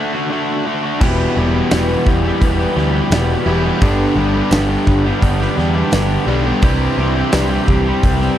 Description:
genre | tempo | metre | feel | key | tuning
classic rock | 85 BPM | 4/4 | straight | E minor | A4 = 440 Hz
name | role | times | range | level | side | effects
cranked stack guitar | riff | 0.0-8.4 s | E2 to G4 | -18 LUFS | equal | overdrive
picked steel-string acoustic guitar | accompaniment | 1.0-8.4 s | E2 to G4 | -24 LUFS | left 1 dB | none
cranked stack guitar | riff | 1.0-8.4 s | G2 to E4 | -22 LUFS | equal | overdrive
fuzz picked electric bass | bass | 1.0-8.3 s | E1 to E2 | -18 LUFS | equal | overdrive
huge arena drum kit | drums | 1.0-8.3 s | crash cymbal, hi-hat, kick drum, snare drum | -18 LUFS | equal | none
tambourine | percussion | 1.7-7.5 s | none | -34 LUFS | right 5 dB | none
room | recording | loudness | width
little or no reverb | dry, close 1970s-style studio recording | -13 LUFS | side -11 dB against mid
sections
0.0-8.4 A section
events
none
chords
0.0 D; 1.0 Em; 3.8 G; 6.6 Cadd9

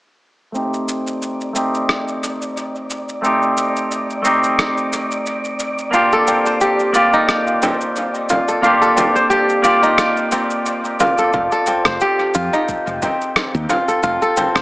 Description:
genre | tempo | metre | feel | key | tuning
organic downtempo | 89 BPM | 4/4 | swing 55% on 16ths | F mixolydian | A4 = 442 Hz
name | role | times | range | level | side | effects
clean electric guitar | accompaniment | 0.5-11.3 s | A3 to D5 | -18 LUFS | equal | sidechain pumping, low-pass filter, dub echo
electronic shaker and rim click | drums | 0.5-14.6 s | none | -23 LUFS | equal | overdrive, studio reverb, dub echo
wind-like tuned noise texture | texture | 1.1-14.6 s | D5 to G5 | -27 LUFS | equal | built-in reverb
kora | arpeggios | 5.9-14.6 s | C4 to C5 | -16 LUFS | equal | dub echo
frame drum | percussion | 7.6-14.5 s | none | -25 LUFS | right 1 dB | dub echo
mellow fretless electric bass | bass | 11.3-14.6 s | F1 to F2 | -24 LUFS | equal | sidechain pumping
electronic kick drum | drums | 11.3-13.2 s | none | -30 LUFS | equal | studio reverb
room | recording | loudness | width
wet spring reverb, RT60 2.7 s | echo-heavy mix, small speaker sound | -15 LUFS | side -21 dB against mid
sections
0.6-11.3 A section; 11.3-14.6 B section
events
filter sweep on clean electric guitar 0.6-11.3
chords
0.6 Cm69/A; 5.9 Ebmaj7; 11.3 F7

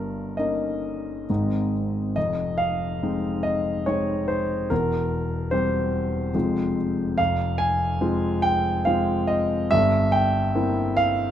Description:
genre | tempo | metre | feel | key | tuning
classical, romantic character piece for solo piano | 71 BPM | 3/4 | rubato | F minor from 7.2 s | A4 = 437 Hz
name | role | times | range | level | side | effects
warm concert grand piano | solo | 0.0-11.3 s | E1 to Ab5 | -21 LUFS | equal | none
room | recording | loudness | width
light reverb | close, detailed microphones | -21 LUFS | side -10 dB against mid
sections
0.0-11.3 A section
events
none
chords
0.0 Eb7/G; 1.3 Ab; 2.2 Fm7; 4.7 C7/E; 6.3 Fm; 9.7 C7/G

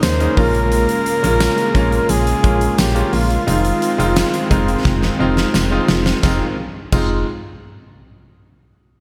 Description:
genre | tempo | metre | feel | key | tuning
1980s-style pop | 87 BPM | 4/4 | straight | F minor | A4 = 440 Hz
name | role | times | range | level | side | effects
warm flugelhorn | melody | 0.0-5.2 s | F4 to C5 | -22 LUFS | equal | none
bright grand piano | accompaniment | 0.0-7.2 s | Ab3 to F4 | -23 LUFS | equal | none
brassy analog pad | sustained chords | 0.0-6.6 s | Db3 to F4 | -25 LUFS | equal | chorus
solid FM bass | bass | 0.0-7.2 s | F1 to Eb2 | -22 LUFS | equal | none
huge arena drum kit | drums | 0.0-7.1 s | crash cymbal, hi-hat, kick drum, snare drum, tambourine | -23 LUFS | equal | none
tambourine | percussion | 0.0-7.2 s | none | -36 LUFS | equal | none
room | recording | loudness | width
light reverb, studio reverb | none | -16 LUFS | mono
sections
0.0-6.2 A section; 6.2-9.0 B section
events
drum fill 4.9-6.2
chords
0.4 Bbm7; 3.5 Fm7

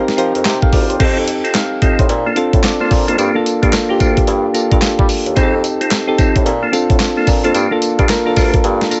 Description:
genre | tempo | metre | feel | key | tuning
R&B, new jack swing | 110 BPM | 4/4 | swing 62% on 16ths | unclear | A4 = 440 Hz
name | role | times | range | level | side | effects
soft electric-piano-like synth keys | accompaniment | 0.0-9.0 s | Bb3 to G5 | -18 LUFS | equal | chorus
mellow bassoon | bass | 0.0-8.8 s | D2 to G3 | -22 LUFS | equal | none
clean 12-bit digital drum machine | drums | 0.1-9.0 s | crash cymbal, handclaps, hi-hat, kick drum, snare drum, tambourine | -18 LUFS | equal | none
cowbell | percussion | 0.5-8.8 s | none | -32 LUFS | equal | none
percussive tonewheel organ | stabs | 1.0-8.6 s | Bb3 to A4 | -23 LUFS | equal | overdrive, chorus vibrato, fast rotary speaker, tape echo
room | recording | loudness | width
light reverb | nothing above 7.9 kHz | -14 LUFS | mono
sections
0.0-1.0 A section; 1.0-9.0 B section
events
none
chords
0.0 F7sus4; 1.0 F7; 2.1 Bbmaj7; 3.2 Gm7; 5.4 F7; 6.5 Bbmaj7; 7.5 Gm7

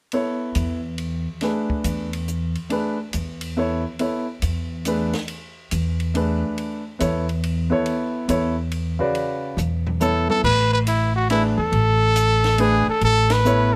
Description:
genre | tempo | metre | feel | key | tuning
modal jazz | 140 BPM | 3/4 | swing 66% on 8ths | A major | A4 = 441 Hz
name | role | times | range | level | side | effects
warm grand piano | accompaniment | 0.1-13.7 s | C#3 to D5 | -25 LUFS | equal | none
compact cocktail drum kit | drums | 0.1-13.6 s | crash cymbal, hi-hat, kick drum, ride cymbal, snare drum, toms | -35 LUFS | equal | none
upright bass | bass | 0.6-13.8 s | A1 to E2 | -25 LUFS | equal | none
clear trumpet | melody | 10.0-13.8 s | E4 to B4 | -22 LUFS | equal | none
room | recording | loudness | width
light reverb | none | -22 LUFS | mono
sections
0.1-10.4 A section; 10.4-13.8 B section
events
drum fill 9.6-10.4; band accent 13.2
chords
0.1 Amaj9; 10.4 Amaj7sus2

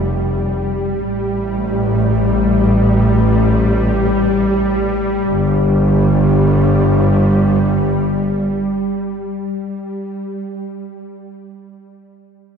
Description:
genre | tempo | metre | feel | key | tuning
ambient | free time | none | none | unclear | A4 = 440 Hz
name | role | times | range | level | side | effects
bright studio double bass section | bass | 0.0-8.5 s | F1 to A1 | -16 LUFS | equal | none
bowed-like drone | drone | 0.0-10.1 s | G3 | -17 LUFS | equal | built-in reverb
room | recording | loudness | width
moderate spring reverb, RT60 2.6 s | none | -13 LUFS | side -7 dB against mid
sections
0.0-5.3 A section; 5.3-9.6 B section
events
none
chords
0.0 Fsus2; 1.0 Gsus2/A; 5.3 N.C.

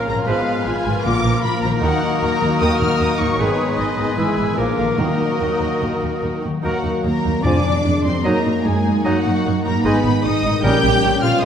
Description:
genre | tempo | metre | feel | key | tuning
classical, dramatic, fast romantic movement for symphony orchestra | 151 BPM | 4/4 | straight | Eb minor | A4 = 440 Hz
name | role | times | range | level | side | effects
warm symphonic violin section | melody | 0.0-11.4 s | Db5 to G6 | -26 LUFS | left 2 dB | none
bright oboe | second line | 0.0-10.8 s | Bb4 to Eb5 | -30 LUFS | right 1 dB | none
hollow concert flute | second line | 0.0-10.8 s | Ab5 to F6 | -32 LUFS | left 2 dB | none
mellow clarinet | second line | 0.0-10.8 s | Db4 to Ab4 | -29 LUFS | left 1 dB | none
warm symphonic violin section | second line | 0.0-11.4 s | F4 to G5 | -27 LUFS | left 2 dB | none
mellow bassoon | accompaniment | 0.0-10.8 s | F3 to Bb3 | -26 LUFS | right 1 dB | none
warm symphonic viola section | accompaniment | 0.0-11.3 s | Db3 to F4 | -27 LUFS | right 1 dB | none
mellow French horn section | sustained chords | 0.0-11.4 s | Eb3 to Eb4 | -25 LUFS | left 3 dB | none
concert harp | arpeggios | 0.0-11.4 s | F2 to Eb5 | -26 LUFS | left 5 dB | none
dark symphonic cello section | bass | 0.1-11.4 s | Eb2 to G4 | -24 LUFS | right 3 dB | none
warm studio double bass section | bass | 0.1-11.4 s | Ab1 to Gb2 | -24 LUFS | right 3 dB | none
timpani | percussion | 1.0-1.6, 5.0-8.0, 10.6-11.2 s | F2 to Eb3 | -25 LUFS | left 1 dB | none
room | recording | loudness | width
wet scoring stage reverb, RT60 1.8 s | none | -16 LUFS | side -8 dB against mid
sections
0.0-6.6 A section; 6.6-11.4 B section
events
none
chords
0.3 Fdim/Ab; 1.0 Bb; 1.8 Ebm; 3.4 Abm; 4.2 E/G#; 4.6 Bb7; 5.0 Ebm; 7.5 Ddim/F; 8.3 Ebm/Gb; 9.9 Abm; 10.7 Gdim/Bb

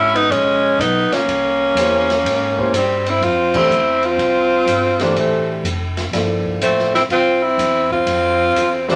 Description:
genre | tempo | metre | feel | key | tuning
modal jazz | 124 BPM | 4/4 | swing 66% on 8ths | F major from 3.2 s | A4 = 440 Hz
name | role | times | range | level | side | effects
clear tenor saxophone | melody | 0.0-9.0 s | C4 to F4 | -19 LUFS | equal | none
clear tenor saxophone | second line | 0.0-9.0 s | G3 to Db4 | -21 LUFS | equal | none
upright bass | bass | 0.0-9.0 s | F1 to Ab2 | -30 LUFS | equal | none
open jazz drum kit | drums | 0.2-9.0 s | crash cymbal, hi-hat, kick drum, ride cymbal, snare drum | -28 LUFS | equal | none
warm grand piano | accompaniment | 1.8-9.0 s | E3 to D5 | -22 LUFS | equal | none
room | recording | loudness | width
wet studio reverb, RT60 0.5 s | none | -17 LUFS | mono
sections
0.0-3.2 A section; 3.2-9.0 B section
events
band accent 3.5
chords
0.0 Gbsus4 (rootless); 1.3 C7b9; 3.2 Fmaj9

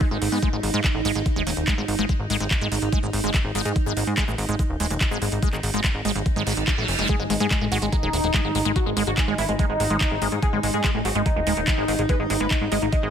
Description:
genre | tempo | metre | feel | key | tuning
psychedelic trance | 144 BPM | 4/4 | straight | unclear | A4 = 440 Hz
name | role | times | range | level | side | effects
evolving wavetable pad | sustained chords | 0.0-13.1 s | D#4 | -30 LUFS | right 3 dB | phaser, built-in reverb, sidechain pumping
liquid acid bass | riff | 0.0-13.1 s | F#3 to D#4 | -28 LUFS | moving between left 5 dB and right 5 dB | phaser, auto-pan, sidechain pumping, dub echo
electronic kick drum | drums | 0.0-13.0 s | none | -23 LUFS | equal | overdrive, studio reverb
plucky analog bass | bass | 0.1-13.1 s | D#1 to G#2 | -26 LUFS | equal | none
garage drum kit | drums | 0.2-13.0 s | handclaps, hi-hat | -28 LUFS | right 1 dB | overdrive, studio reverb
reverse cymbal | sound effects | 6.4-7.1 s | none | -29 LUFS | right 5 dB | none
wide unison lead | melody | 7.1-13.1 s | G#3 to D#5 | -26 LUFS | left 1 dB | phaser, cassette tape, sidechain pumping, dub echo
room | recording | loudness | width
little or no reverb | none | -20 LUFS | side -8 dB against mid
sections
0.0-13.1 A section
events
reverse cymbal 6.4-7.1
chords
0.0 G#5

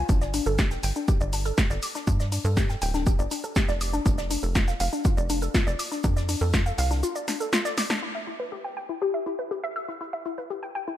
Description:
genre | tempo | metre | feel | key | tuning
melodic techno | 121 BPM | 4/4 | straight | E phrygian | A4 = 440 Hz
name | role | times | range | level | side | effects
woody wave-folded pluck | arpeggios | 0.0-10.9 s | D4 to E6 | -30 LUFS | left 2 dB | analog chorus, cassette tape, sidechain pumping, dub echo
tight sequencer bass | bass | 0.0-7.0 s | D1 to G2 | -27 LUFS | equal | sidechain pumping
electronic kick drum | drums | 0.1-6.6 s | none | -23 LUFS | equal | studio reverb
techno drum kit | drums | 0.1-11.0 s | crash cymbal, hi-hat, shaker, snare drum | -30 LUFS | equal | overdrive, low-pass filter on perc, studio reverb, low-pass filter on hats, low-pass filter on snare, low-pass filter on cymbals
unplugged drum kit | drums | 0.1-7.9 s | hi-hat, shaker, snare drum | -40 LUFS | right 1 dB | sidechain pumping on hats, high-pass filter on hats, studio reverb, high-pass filter on snare, sidechain pumping on perc, high-pass filter on perc, high-pass filter on room
room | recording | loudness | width
light reverb, studio ambience | none | -24 LUFS | side -12 dB against mid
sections
0.0-8.0 A section; 8.0-11.0 B section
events
drum fill 7.8; band accent 7.9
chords
0.1 G5; 4.1 Dm/F; 8.0 Em

